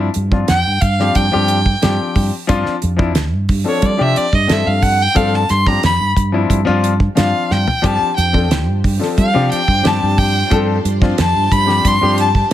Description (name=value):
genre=electric jazz fusion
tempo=90 BPM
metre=4/4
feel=straight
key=unclear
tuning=A4 = 440 Hz
part: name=warm baby grand piano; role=accompaniment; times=0.0-12.4 s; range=F3 to A4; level=-19 LUFS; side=left 4 dB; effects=plate reverb
part: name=mellow fretless electric bass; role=bass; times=0.0-12.4 s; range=D2 to G3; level=-17 LUFS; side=right 1 dB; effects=wide subtle chorus
part: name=damped 70s drum kit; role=drums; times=0.1-12.5 s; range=hi-hat, kick drum, snare drum, toms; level=-18 LUFS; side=right 1 dB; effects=none
part: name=warm violin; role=melody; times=0.5-12.4 s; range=C#5 to C6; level=-17 LUFS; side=equal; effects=slapback echo, plate reverb
part: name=string machine, full ensemble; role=sustained chords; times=7.8-12.5 s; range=F3 to C5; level=-26 LUFS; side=right 2 dB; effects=ensemble chorus, plate reverb
room=light reverb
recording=none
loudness=-12 LUFS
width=side -12 dB against mid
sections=0.0-12.5 A section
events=violin solo 0.0-12.5; drum fill 7.5-7.8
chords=0.0 G7sus4